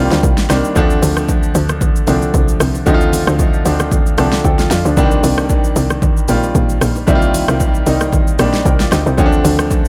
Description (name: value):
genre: amapiano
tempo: 114 BPM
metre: 4/4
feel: swing 55% on 16ths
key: D phrygian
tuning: A4 = 440 Hz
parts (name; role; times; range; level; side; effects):
- clear grand piano; accompaniment; 0.0-9.9 s; D3 to A5; -19 LUFS; equal; analog delay
- tight log drum bass; bass; 0.0-9.9 s; Bb1 to F2; -19 LUFS; equal; none
- deep house drum kit; drums; 0.1-9.9 s; hi-hat, kick drum, rim click, shaker, snare drum; -18 LUFS; equal; none
- congas and bongos; percussion; 0.8-9.8 s; none; -28 LUFS; equal; none
room: digital ambience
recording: echo-heavy mix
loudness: -14 LUFS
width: mono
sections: 0.0-9.9 A section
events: grand piano fill 3.9-5.0, 8.4-9.2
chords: 0.0 Cm7; 0.8 Dm7; 5.0 Cm7; 9.2 Dm7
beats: 0.23 | 0.76 1.29 1.81 2.34 | 2.87 3.39 3.92 4.45 | 4.97 5.50 6.02 6.55 | 7.08 7.60 8.13 8.65 | 9.18 9.71